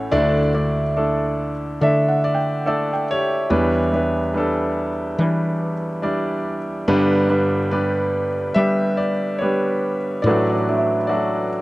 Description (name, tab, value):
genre	folk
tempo	71 BPM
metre	4/4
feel	straight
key	D major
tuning	A4 = 440 Hz
part	clear baby grand piano	melody	0.0-11.6 s	G1 to E5	-19 LUFS	equal	none
part	felt-muted upright piano	arpeggios	0.0-4.1, 10.3-11.6 s	B4 to G5	-26 LUFS	right 2 dB	slapback echo
part	woody fretless electric bass	bass	0.0-11.6 s	D2 to G3	-24 LUFS	left 1 dB	none
room	little or no reverb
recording	recorded outdoors, with no room sound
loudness	-18 LUFS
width	side -19 dB against mid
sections	0.0-11.6 A section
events	none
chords	0.1 Dsus2; 3.5 Em7; 6.9 G; 10.3 D/A